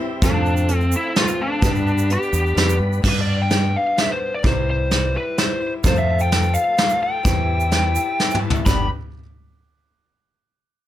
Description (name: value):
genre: folk rock and heartland rock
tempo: 128 BPM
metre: 3/4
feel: straight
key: G mixolydian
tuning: A4 = 440 Hz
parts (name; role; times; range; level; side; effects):
- picked old ladder-braced acoustic guitar; accompaniment; 0.0-8.9 s; F2 to G4; -29 LUFS; left 5 dB; none
- warm concert grand piano; accompaniment; 0.0-8.9 s; B3 to D5; -33 LUFS; right 5 dB; none
- tonewheel organ; sustained chords; 0.0-3.0, 5.8-8.9 s; C4 to B5; -32 LUFS; right 1 dB; chorus vibrato, stopped rotary speaker
- biting lead guitar; melody; 0.2-8.9 s; D4 to B5; -22 LUFS; left 2 dB; overdrive
- deep dub fingered electric bass; bass; 0.2-8.9 s; G1 to G2; -20 LUFS; equal; none
- soft brush drum kit; drums; 0.2-8.8 s; crash cymbal, hi-hat, kick drum, snare drum, splash cymbal, toms; -21 LUFS; right 1 dB; none
- egg shaker; percussion; 0.2-3.0, 5.8-8.9 s; none; -34 LUFS; right 11 dB; none
room: light reverb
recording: none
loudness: -17 LUFS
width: side -12 dB against mid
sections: 0.0-3.0 A section; 3.0-8.7 B section; 8.7-10.1 C section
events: drum fill 8.2-8.7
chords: 0.2 F; 1.6 G; 4.4 C; 5.8 F; 7.3 C/E; 8.7 G